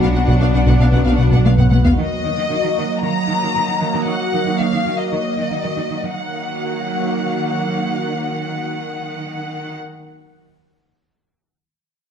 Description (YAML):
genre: cinematic, hybrid orchestral and electronic film score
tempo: 115 BPM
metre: 4/4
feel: straight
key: Eb harmonic minor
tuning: A4 = 440 Hz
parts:
  - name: warm symphonic violin section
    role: melody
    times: 0.0-9.7 s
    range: Eb5 to Bb5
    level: -24 LUFS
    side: left 3 dB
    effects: none
  - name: clear symphonic violin section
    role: second line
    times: 0.0-1.9 s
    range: F5 to F#5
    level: -30 LUFS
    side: left 4 dB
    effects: none
  - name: clear symphonic viola section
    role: accompaniment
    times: 0.0-1.9 s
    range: B3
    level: -25 LUFS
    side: right 1 dB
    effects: none
  - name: clear trombone section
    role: sustained chords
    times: 0.0-1.1 s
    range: F#2 to F#3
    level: -33 LUFS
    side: equal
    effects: none
  - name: mellow French horn section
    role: sustained chords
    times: 0.0-1.1 s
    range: B3 to F#4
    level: -28 LUFS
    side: left 4 dB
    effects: none
  - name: phased analog pad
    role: sustained chords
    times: 0.0-9.7 s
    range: F#3 to F#5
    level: -22 LUFS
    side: right 2 dB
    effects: phaser, chorus
  - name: smooth synth bass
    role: riff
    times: 0.0-1.9 s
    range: B2 to B3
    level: -16 LUFS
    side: left 2 dB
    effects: none
  - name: bright symphonic cello section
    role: bass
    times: 0.0-9.7 s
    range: Eb3 to D4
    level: -26 LUFS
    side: right 2 dB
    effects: none
  - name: clear symphonic double bass section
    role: bass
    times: 0.0-1.9 s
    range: B1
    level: -24 LUFS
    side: right 4 dB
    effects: none
  - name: sub bass with octave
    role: bass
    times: 0.0-2.0 s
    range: B1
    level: -19 LUFS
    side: equal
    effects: none
  - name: solo taiko drums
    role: drums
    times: 0.3-2.1 s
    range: none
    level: -22 LUFS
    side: equal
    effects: none
room: moderate recital hall reverb, RT60 1.5 s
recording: dark, warm production, lossy compression artefacts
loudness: -16 LUFS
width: side -8 dB against mid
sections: 0.0-2.0 A section; 2.0-6.2 B section; 6.2-10.3 C section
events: drum fill 1.5-2.0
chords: 0.0 Bm; 2.0 Ebm